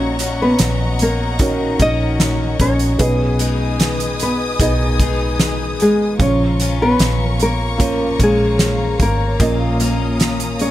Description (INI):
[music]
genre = pop ballad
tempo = 75 BPM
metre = 4/4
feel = straight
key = Eb minor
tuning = A4 = 440 Hz
[part]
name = nylon-string guitar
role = melody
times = 0.0-10.7 s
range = Ab3 to Eb5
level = -19 LUFS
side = left 1 dB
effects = none
[part]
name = felt-muted upright piano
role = accompaniment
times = 0.0-10.7 s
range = Bb2 to Eb5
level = -23 LUFS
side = right 2 dB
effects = none
[part]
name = warm studio string section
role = sustained chords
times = 0.0-10.7 s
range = Cb5 to Eb6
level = -26 LUFS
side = left 3 dB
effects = none
[part]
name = picked steel-string acoustic guitar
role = arpeggios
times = 0.0-10.7 s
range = Bb2 to Ab4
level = -27 LUFS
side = left 7 dB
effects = none
[part]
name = vintage muted fingered electric bass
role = bass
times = 0.0-10.7 s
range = Ab1 to Cb2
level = -20 LUFS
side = equal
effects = none
[part]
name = loose indie drum kit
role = drums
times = 0.2-10.7 s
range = hi-hat, kick drum, snare drum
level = -20 LUFS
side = equal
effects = none
[sound]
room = light reverb, small room ambience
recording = none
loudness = -14 LUFS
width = side -14 dB against mid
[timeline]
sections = 0.0-10.7 A section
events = none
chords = 0.0 Ebm7/Bb; 3.0 Abm/Cb; 6.2 Bbm